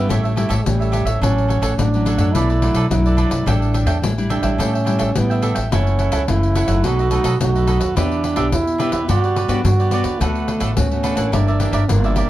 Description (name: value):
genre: samba and choro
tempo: 107 BPM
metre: 4/4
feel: straight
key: D major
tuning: A4 = 440 Hz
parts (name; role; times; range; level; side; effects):
- mellow trombone; second line; 0.0-12.3 s; G3 to F#4; -22 LUFS; right 3 dB; none
- cavaquinho; accompaniment; 0.0-12.3 s; D4 to G5; -25 LUFS; right 3 dB; none
- nylon-string guitar; accompaniment; 0.0-12.3 s; F#2 to G4; -24 LUFS; left 3 dB; none
- upright bass; bass; 0.0-12.3 s; F#1 to A2; -19 LUFS; equal; none
- pandeiro; percussion; 0.1-12.3 s; none; -25 LUFS; left 4 dB; none
room: light reverb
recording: dark, warm production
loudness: -15 LUFS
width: side -14 dB against mid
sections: 0.0-12.3 A section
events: trombone solo 0.0-12.3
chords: 0.1 A7; 1.2 Dmaj7/A; 2.3 Bm7; 3.5 A7sus4; 5.7 F#m7; 6.8 B7; 8.0 Em7; 9.1 Gmaj7; 10.2 D6; 11.3 Gm6